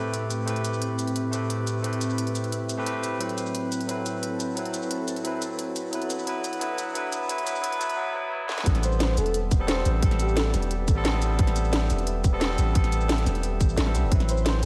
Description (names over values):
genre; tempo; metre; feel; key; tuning
liquid drum and bass; 176 BPM; 4/4; straight; A dorian; A4 = 439 Hz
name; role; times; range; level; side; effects
barky tine electric piano; accompaniment; 0.0-14.7 s; F#3 to B4; -32 LUFS; equal; overdrive, tape echo
glassy FM pad; sustained chords; 0.0-14.7 s; A2 to F#5; -35 LUFS; equal; ensemble chorus, built-in reverb, sidechain pumping
garage drum kit; drums; 0.1-14.7 s; hi-hat, shaker, snare drum; -34 LUFS; equal; none
long sustained 808-style bass; bass; 8.7-14.7 s; E1 to C2; -27 LUFS; equal; none
electronic kick drum; drums; 8.7-14.2 s; none; -24 LUFS; equal; none
breathy flute-like synth lead; melody; 8.8-10.5, 14.3-14.7 s; G4 to C5; -34 LUFS; equal; analog chorus, tape echo
room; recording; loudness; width
moderate lush hall reverb, RT60 1.8 s, digital ambience; dreamy mix soaked in reverb, high-pass filter; -26 LUFS; mono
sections
0.0-8.7 A section; 8.7-14.7 B section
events
build-up 0.0-8.7; filter sweep on ambient pad 0.0-8.7; filter sweep 0.0-8.7; drum fill 8.5; drop 8.7-14.7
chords
0.0 Am9; 3.2 Am69; 5.9 D69/F#; 8.7 Am9; 14.1 D13 (rootless)